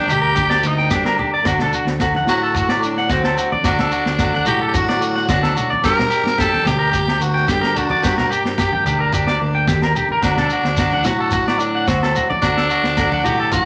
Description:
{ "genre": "highlife guitar band", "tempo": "110 BPM", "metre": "4/4", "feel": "straight", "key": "G harmonic minor", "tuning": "A4 = 440 Hz", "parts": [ { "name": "growling tenor saxophone", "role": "melody", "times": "0.0-13.7 s", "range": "C4 to Bb4", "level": "-24 LUFS", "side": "equal", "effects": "none" }, { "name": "fingerpicked steel-string acoustic guitar", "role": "accompaniment", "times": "0.0-13.7 s", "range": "G2 to Bb4", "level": "-32 LUFS", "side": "equal", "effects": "none" }, { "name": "electric guitar at the edge of break-up", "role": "arpeggios", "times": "0.0-13.6 s", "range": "D4 to G5", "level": "-22 LUFS", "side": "equal", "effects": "spring reverb" }, { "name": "overdriven tine electric piano", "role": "bass", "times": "0.0-13.7 s", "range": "D2 to A2", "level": "-26 LUFS", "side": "equal", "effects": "none" }, { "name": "agogo bells", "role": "percussion", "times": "0.1-13.4 s", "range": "none", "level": "-31 LUFS", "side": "equal", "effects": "none" }, { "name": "congas", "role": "percussion", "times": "0.1-13.7 s", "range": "none", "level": "-30 LUFS", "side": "equal", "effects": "none" }, { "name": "shekere", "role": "percussion", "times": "0.1-13.7 s", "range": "none", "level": "-28 LUFS", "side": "equal", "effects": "none" }, { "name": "vintage drum kit", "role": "drums", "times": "0.3-13.7 s", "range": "kick drum, snare drum", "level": "-26 LUFS", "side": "equal", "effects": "none" } ], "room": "wet studio reverb, RT60 0.5 s", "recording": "none", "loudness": "-17 LUFS", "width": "mono", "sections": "0.0-13.7 A section", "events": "none", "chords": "0.0 Gm; 1.5 D; 5.8 Gm; 10.2 D", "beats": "0.36 0.91 | 1.46 2.01 2.55 3.10 | 3.65 4.20 4.75 5.29 | 5.84 6.39 6.94 7.49 | 8.03 8.58 9.13 9.68 | 10.23 10.77 11.32 11.87 | 12.42 12.97 13.52" }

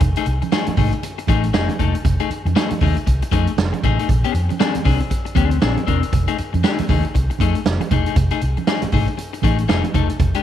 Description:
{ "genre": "funk", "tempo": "118 BPM", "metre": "4/4", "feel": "swing 60% on 16ths", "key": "unclear", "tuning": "A4 = 441 Hz", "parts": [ { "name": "electric guitar at the edge of break-up", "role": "accompaniment", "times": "0.0-10.4 s", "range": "A3 to Bb4", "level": "-22 LUFS", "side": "left 11 dB", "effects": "none" }, { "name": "vintage muted fingered electric bass", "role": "bass", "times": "0.0-10.3 s", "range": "E1 to F2", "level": "-20 LUFS", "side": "equal", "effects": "none" }, { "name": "swinging big-band drum kit", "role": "drums", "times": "0.0-10.4 s", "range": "hi-hat, kick drum, snare drum", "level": "-20 LUFS", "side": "right 2 dB", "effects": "none" }, { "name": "congas", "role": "percussion", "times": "0.0-10.3 s", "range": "none", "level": "-26 LUFS", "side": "right 7 dB", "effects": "none" } ], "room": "light reverb, small room reverb", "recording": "1960s-style stereo with parts hard left and right", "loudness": "-16 LUFS", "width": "side -11 dB against mid", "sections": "0.0-10.4 A section", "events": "none", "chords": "0.0 F7#9; 4.1 Bb9; 6.1 F7#9", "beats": "| 0.01 0.52 1.03 1.54 | 2.05 2.56 3.07 3.58 | 4.09 4.60 5.11 5.62 | 6.13 6.64 7.14 7.65 | 8.16 8.67 9.18 9.69 | 10.20" }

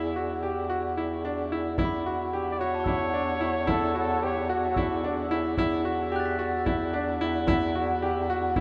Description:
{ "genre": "contemporary instrumental, chamber music in an uneven meter", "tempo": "221 BPM (eighths)", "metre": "7/8", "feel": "straight", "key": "unclear", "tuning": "A4 = 440 Hz", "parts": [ { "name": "bright concert grand piano", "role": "arpeggios", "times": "0.0-8.6 s", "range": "D4 to G4", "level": "-31 LUFS", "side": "equal", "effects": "none" }, { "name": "clear bass clarinet", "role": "bass", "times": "0.0-8.6 s", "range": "E2", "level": "-33 LUFS", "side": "equal", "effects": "none" }, { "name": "frame drum", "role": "percussion", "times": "1.8-8.6 s", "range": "none", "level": "-36 LUFS", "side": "equal", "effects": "none" }, { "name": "glockenspiel with soft plastic mallets", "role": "texture", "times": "1.9-7.8 s", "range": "A5 to B6", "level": "-40 LUFS", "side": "equal", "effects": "none" }, { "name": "clear flugelhorn", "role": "melody", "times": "2.5-5.3 s", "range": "F#4 to D5", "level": "-35 LUFS", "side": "equal", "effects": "none" } ], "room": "wet huge ambient reverb, RT60 7.4 s", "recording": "in a vast, echoing space", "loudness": "-28 LUFS", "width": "mono", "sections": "0.0-8.6 A section", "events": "none", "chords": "0.0 Em7", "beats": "0.16 0.43 0.70 0.97 1.24 1.51 | 1.78 2.05 2.33 2.60 2.87 3.14 3.41 | 3.68 3.95 4.22 4.50 4.77 5.04 5.31 | 5.58 5.85 6.12 6.39 6.66 6.94 7.21 | 7.48 7.75 8.02 8.29 8.56" }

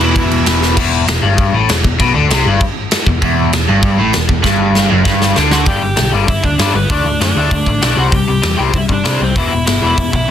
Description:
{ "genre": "punk rock", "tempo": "196 BPM", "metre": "4/4", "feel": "straight", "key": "E minor", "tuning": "A4 = 439 Hz", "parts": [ { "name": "dark smooth lead guitar", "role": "melody", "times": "0.0-0.5, 5.5-10.3 s", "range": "B3 to G5", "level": "-18 LUFS", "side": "right 2 dB", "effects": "overdrive" }, { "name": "overdriven electric guitar", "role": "riff", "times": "0.0-10.3 s", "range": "E2 to D4", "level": "-16 LUFS", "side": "left 7 dB", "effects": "none" }, { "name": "overdriven electric guitar", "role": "riff", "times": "0.0-0.8, 3.2-5.7 s", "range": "E2 to E3", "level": "-17 LUFS", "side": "right 13 dB", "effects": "none" }, { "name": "hollow-body short-scale picked electric bass", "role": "bass", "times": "0.0-10.2 s", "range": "E1 to C3", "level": "-17 LUFS", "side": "equal", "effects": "none" }, { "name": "big rock drum kit", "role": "drums", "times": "0.0-10.2 s", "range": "crash cymbal, hi-hat, kick drum, snare drum", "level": "-16 LUFS", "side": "equal", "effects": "none" } ], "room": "little or no reverb", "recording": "dense, heavily limited modern master", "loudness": "-11 LUFS", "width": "side -9 dB against mid", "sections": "0.8-5.7 A section; 5.7-10.3 B section", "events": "drum fill 0.6, 4.4-5.7", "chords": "0.0 E5; 0.8 Em; 5.7 G; 6.9 D5; 8.0 C5; 9.4 E5", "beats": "0.15 0.46 | 0.77 1.07 1.38 1.69 | 1.99 2.30 2.61 2.91 | 3.22 3.52 3.83 4.14 | 4.44 4.75 5.05 5.36 | 5.67 5.97 6.28 6.59 | 6.89 7.20 7.51 7.82 | 8.12 8.43 8.74 9.05 | 9.36 9.67 9.98 10.29" }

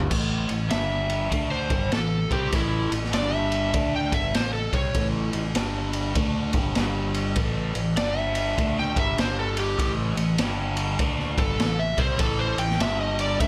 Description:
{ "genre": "blues rock power trio and southern rock", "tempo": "99 BPM", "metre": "4/4", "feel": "swing 64% on 8ths", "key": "unclear", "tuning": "A4 = 440 Hz", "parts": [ { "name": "overdriven electric guitar", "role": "riff", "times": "0.0-13.5 s", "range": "G2 to D4", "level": "-31 LUFS", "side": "equal", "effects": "phaser" }, { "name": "growling fingered electric bass", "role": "bass", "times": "0.0-13.5 s", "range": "G1 to D2", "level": "-32 LUFS", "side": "equal", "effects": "overdrive" }, { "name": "raw garage drum kit", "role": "drums", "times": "0.0-13.5 s", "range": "crash cymbal, kick drum, ride cymbal, snare drum, toms", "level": "-29 LUFS", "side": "equal", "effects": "none" }, { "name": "overdriven slide guitar", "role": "melody", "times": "0.7-13.5 s", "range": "E4 to G5", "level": "-30 LUFS", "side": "equal", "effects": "none" } ], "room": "moderate club reverb, RT60 0.6 s", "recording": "none", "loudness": "-25 LUFS", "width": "mono", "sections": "0.1-13.5 A section", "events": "electric slide guitar solo 0.1-13.5", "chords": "0.1 A5; 0.7 G5; 1.3 A5; 3.1 G5; 3.7 A5; 5.6 G5; 6.2 Gsus2; 6.8 G5; 7.4 A5; 8.0 G5; 8.6 Gsus2; 9.2 G5; 9.8 A5; 10.4 G5; 11.0 A5; 12.8 G5", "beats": "| 0.11 0.71 1.32 1.92 | 2.53 3.13 3.74 4.34 | 4.95 5.55 6.16 6.76 | 7.37 7.97 8.58 9.18 | 9.78 10.39 10.99 11.60 | 12.20 12.80 13.40" }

